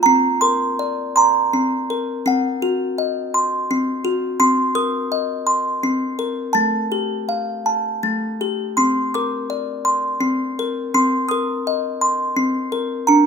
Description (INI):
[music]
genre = children's music, lullaby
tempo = 56 BPM (dotted quarters)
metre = 6/8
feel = rubato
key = Bb major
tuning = A4 = 441 Hz
[part]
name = music box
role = solo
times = 0.0-13.3 s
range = A3 to Eb6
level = -17 LUFS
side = equal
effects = none
[sound]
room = moderate recital hall reverb, RT60 1.4 s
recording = minimal, uncompressed stereo recording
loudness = -18 LUFS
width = side -6 dB against mid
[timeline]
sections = 0.0-13.3 A section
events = none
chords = 0.0 Bbadd9; 2.2 Ebm6; 4.4 Cm7; 6.5 Fadd9; 8.8 Bbadd9; 10.9 Cm7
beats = | 0.03 1.15 | 2.25 3.33 | 4.40 5.47 | 6.54 7.64 | 8.75 9.85 | 10.93 12.00 | 13.07